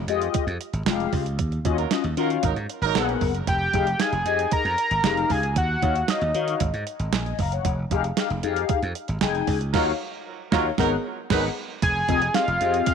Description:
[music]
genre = early-eighties boogie funk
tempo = 115 BPM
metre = 4/4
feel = straight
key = F phrygian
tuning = A4 = 440 Hz
[part]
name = slap bass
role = bass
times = 0.0-12.9 s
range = F1 to Eb3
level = -27 LUFS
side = right 1 dB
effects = none
[part]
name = mellow synth brass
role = accompaniment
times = 0.1-12.9 s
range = Ab3 to Bb5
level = -27 LUFS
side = left 11 dB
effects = chorus
[part]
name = clean 12-bit digital drum machine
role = drums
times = 0.1-12.9 s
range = crash cymbal, hi-hat, kick drum, snare drum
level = -27 LUFS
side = right 5 dB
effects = none
[part]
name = warm horn section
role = second line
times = 1.8-3.2, 9.7-11.4 s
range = Gb3 to Cb5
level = -28 LUFS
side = right 13 dB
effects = tape echo
[part]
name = fat analog lead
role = melody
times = 3.5-6.6, 11.8-12.9 s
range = Eb5 to Bb5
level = -24 LUFS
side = right 1 dB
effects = chorus
[sound]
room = light reverb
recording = 1960s-style stereo with parts hard left and right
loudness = -21 LUFS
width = side -7 dB against mid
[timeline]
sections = 0.0-11.8 A section; 11.8-12.9 A section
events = band accent 1.4-3.5, 9.7-11.8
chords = 0.0 Fm9; 1.4 Ebm9; 2.4 Abm9; 3.5 Fm9; 5.6 Ebm9; 6.6 Absus2; 7.7 Fm9; 9.7 Ebm9; 10.8 Abm9; 11.8 Fm9

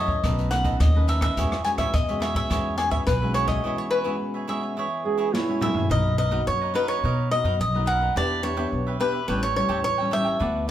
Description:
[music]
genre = samba and choro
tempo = 106 BPM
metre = 4/4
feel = straight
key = E major, B major from 5.9 s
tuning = A4 = 440 Hz
[part]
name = cavaquinho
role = melody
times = 0.0-10.7 s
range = B4 to G#5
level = -25 LUFS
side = left 1 dB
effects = none
[part]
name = cavaquinho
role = accompaniment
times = 0.0-10.7 s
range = D4 to G5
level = -32 LUFS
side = right 4 dB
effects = none
[part]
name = nylon-string guitar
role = accompaniment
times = 0.0-10.7 s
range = F#2 to G4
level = -30 LUFS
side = left 1 dB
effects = none
[part]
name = upright bass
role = bass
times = 0.0-10.7 s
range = A1 to B2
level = -26 LUFS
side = equal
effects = none
[part]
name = open jazz drum kit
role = drums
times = 0.1-5.9 s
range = hi-hat, kick drum, rim click, snare drum, toms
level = -27 LUFS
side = equal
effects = none
[part]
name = mellow duduk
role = second line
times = 5.0-5.9 s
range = E4 to G#4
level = -26 LUFS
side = right 5 dB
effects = none
[sound]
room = moderate large studio reverb, RT60 1.1 s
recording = band playing live in one room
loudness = -21 LUFS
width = side -11 dB against mid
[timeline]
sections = 0.0-5.9 A section; 5.9-10.7 B section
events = drum fill 5.3-5.9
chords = 0.2 B9; 1.4 E69; 5.9 Bmaj7; 8.2 Em7; 9.3 A7

